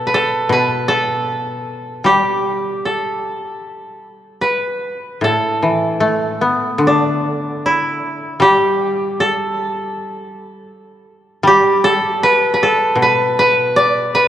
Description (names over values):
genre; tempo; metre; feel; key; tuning
japanese traditional, Japanese chamber music; 77 BPM; 4/4; rubato; A suspended pentatonic; A4 = 440 Hz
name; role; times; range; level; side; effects
koto; melody; 0.0-14.3 s; D4 to D5; -15 LUFS; equal; none
koto; accompaniment; 0.0-14.3 s; A2 to B3; -18 LUFS; left 1 dB; none
room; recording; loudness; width
wet church reverb, RT60 2.9 s; worn, warbling old tape, cassette tape, warbly pitch drift; -14 LUFS; side -11 dB against mid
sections
0.0-5.2 A section; 5.2-14.3 B section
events
none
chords
none